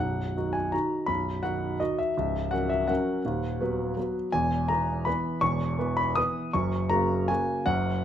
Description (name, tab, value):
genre	classical, piano waltz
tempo	164 BPM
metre	3/4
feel	uneven beats, rubato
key	unclear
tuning	A4 = 440 Hz
part	clear grand piano	solo	0.0-8.0 s	B0 to D#6	-25 LUFS	equal	none
room	moderate large studio reverb, RT60 1.1 s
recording	minimal, uncompressed stereo recording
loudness	-25 LUFS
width	side -10 dB against mid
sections	0.0-8.0 A section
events	none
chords	0.0 B; 2.2 F#7/C#; 3.3 B/D#; 4.3 E; 6.5 F#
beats	| 0.00 0.36 0.73 | 1.09 1.44 1.80 | 2.17 2.52 2.90 | 3.26 3.60 3.97 | 4.33 4.69 5.07 | 5.43 5.79 6.17 | 6.54 6.90 7.29 | 7.67 8.04